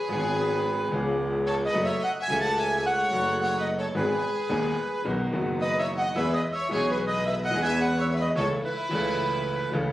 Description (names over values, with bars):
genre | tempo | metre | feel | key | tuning
tango | 109 BPM | 4/4 | rubato | E major | A4 = 442 Hz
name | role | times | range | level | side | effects
bandoneon | melody | 0.0-9.7 s | B4 to A5 | -28 LUFS | right 1 dB | none
clear studio violin section | second line | 0.0-9.7 s | E4 to F#5 | -32 LUFS | left 2 dB | none
bright baby grand piano | accompaniment | 0.1-9.9 s | D#1 to A4 | -30 LUFS | left 2 dB | none
clear double bass | bass | 0.1-9.9 s | F#1 to E2 | -30 LUFS | right 1 dB | none
room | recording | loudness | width
light reverb | recorded on a phone in the room, studio reverb, compression | -24 LUFS | side -15 dB against mid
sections
0.0-9.9 A section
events
none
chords
0.0 C#7; 1.7 F#m; 3.9 G#m; 5.0 B; 6.2 E; 8.4 A/C#